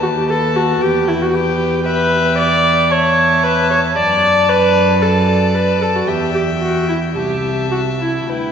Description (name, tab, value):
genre	quick classical-period movement for string quartet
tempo	114 BPM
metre	4/4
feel	rubato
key	unclear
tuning	A4 = 440 Hz
part	rich violin	melody	0.0-8.5 s	G5 to A5	-23 LUFS	left 8 dB	none
part	warm violin	second line	0.0-8.5 s	B4 to E5	-23 LUFS	left 4 dB	none
part	warm viola	accompaniment	0.0-8.5 s	E4 to D5	-15 LUFS	right 1 dB	none
part	dark cello	bass	0.0-8.5 s	C2 to F#2	-19 LUFS	right 1 dB	none
room	wet church reverb, RT60 3.0 s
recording	recorded in a church or concert hall, nothing above 8.0 kHz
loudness	-12 LUFS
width	side -7 dB against mid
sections	0.0-8.5 A section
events	none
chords	0.0 B7/D#; 0.8 Em; 2.9 A/E; 4.0 D/F#; 6.1 Em; 7.2 Am7/C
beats	0.29 0.82 1.34 | 1.86 2.38 2.91 3.44 | 3.96 4.48 5.01 5.54 | 6.08 6.61 7.15 7.71 | 8.29